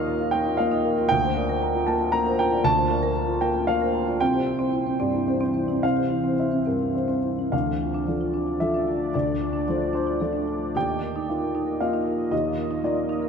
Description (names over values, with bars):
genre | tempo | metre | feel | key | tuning
neoclassical piano and strings | 100-118 BPM | 3/4 | rubato | D minor | A4 = 441 Hz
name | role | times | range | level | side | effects
dark upright piano | accompaniment | 0.0-13.3 s | C2 to Bb5 | -23 LUFS | left 1 dB | none
deep dark ambient pad | sustained chords | 0.0-13.3 s | E3 to Eb5 | -31 LUFS | right 2 dB | chorus, built-in reverb
marimba with medium mallets | arpeggios | 0.1-13.3 s | C4 to Bb5 | -29 LUFS | right 2 dB | slapback echo
room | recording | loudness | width
wet scoring stage reverb, RT60 1.6 s | none | -22 LUFS | side -6 dB against mid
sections
0.0-7.5 A section; 7.5-13.3 B section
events
none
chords
0.0 Ebsus2; 1.1 Bbadd9/D; 4.2 C; 7.5 Dm; 10.7 Ebsus2